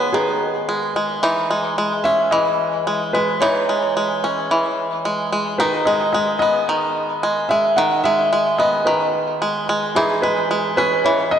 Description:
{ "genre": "folktronica", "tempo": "110 BPM", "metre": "4/4", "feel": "straight", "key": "C# minor", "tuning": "A4 = 441 Hz", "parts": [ { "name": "felt-muted upright piano", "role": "melody", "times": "0.0-11.4 s", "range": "G#4 to F#5", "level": "-20 LUFS", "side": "equal", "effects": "diffuse ambient delay" }, { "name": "bluegrass banjo", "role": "arpeggios", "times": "0.0-11.4 s", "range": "D#3 to D#4", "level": "-19 LUFS", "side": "equal", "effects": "vintage 12-bit sampler grit, diffuse ambient delay" } ], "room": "wet lush hall reverb, RT60 2.9 s", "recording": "dreamy mix soaked in reverb", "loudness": "-16 LUFS", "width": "side -8 dB against mid", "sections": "0.0-11.4 A section", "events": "none", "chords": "0.0 G#m; 1.2 C#madd9; 5.6 G#m; 10.0 C#madd9", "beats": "0.14 0.69 | 1.23 1.78 2.33 2.87 | 3.42 3.96 4.51 5.05 | 5.60 6.14 6.69 7.23 | 7.78 8.32 8.87 9.42 | 9.96 10.51 11.05" }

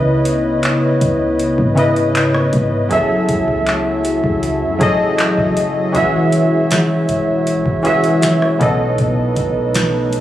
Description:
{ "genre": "contemporary R&B", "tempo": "79 BPM", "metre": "4/4", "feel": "straight", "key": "F# dorian", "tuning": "A4 = 436 Hz", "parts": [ { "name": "warm analog keys", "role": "accompaniment", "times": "0.0-10.2 s", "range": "B2 to E5", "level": "-15 LUFS", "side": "equal", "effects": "chorus" }, { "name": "glass harmonica", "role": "sustained chords", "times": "0.0-10.2 s", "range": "G#3 to C#5", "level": "-20 LUFS", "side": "left 1 dB", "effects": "none" }, { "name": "clean 808-style bass", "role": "bass", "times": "0.0-10.2 s", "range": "E1 to G#2", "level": "-24 LUFS", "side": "equal", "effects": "none" }, { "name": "booming analog drum machine", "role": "drums", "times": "0.3-10.2 s", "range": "handclaps, hi-hat, kick drum, rim click, snare drum", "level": "-21 LUFS", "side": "equal", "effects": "none" } ], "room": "light reverb", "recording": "recorded on a phone in the room, club reverb", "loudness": "-13 LUFS", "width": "side -12 dB against mid", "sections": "0.0-10.2 A section", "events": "none", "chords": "0.0 C#m7; 2.9 F#m9; 5.9 E6; 8.6 B7", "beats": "0.63 1.39 2.15 | 2.91 3.67 4.43 5.19 | 5.95 6.71 7.47 8.23 | 8.98 9.74" }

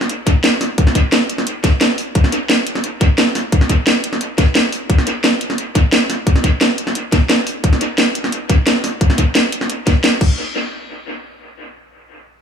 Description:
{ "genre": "drum and bass", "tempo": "175 BPM", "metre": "4/4", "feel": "straight", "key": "none", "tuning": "none", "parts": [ { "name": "garage drum kit", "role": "drums", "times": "0.0-10.3 s", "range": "crash cymbal, hi-hat, snare drum", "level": "-15 LUFS", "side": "equal", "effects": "dub echo" }, { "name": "electronic kick drum", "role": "drums", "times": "0.3-10.3 s", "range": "none", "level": "-12 LUFS", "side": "left 1 dB", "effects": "none" } ], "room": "moderate echo chamber reverb, RT60 1.4 s", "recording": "echo-heavy mix, faint mains hum", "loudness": "-13 LUFS", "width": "side -7 dB against mid", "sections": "0.0-10.4 A section; 10.4-12.4 B section", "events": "drop 0.0-10.4", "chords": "none", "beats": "0.10 0.44 | 0.78 1.12 1.47 1.81 | 2.15 2.50 2.84 3.18 | 3.52 3.87 4.21 4.55 | 4.89 5.24 5.58 5.92 | 6.27 6.61 6.95 7.29 | 7.64 7.98 8.32 8.67 | 9.01 9.35 9.70 10.04" }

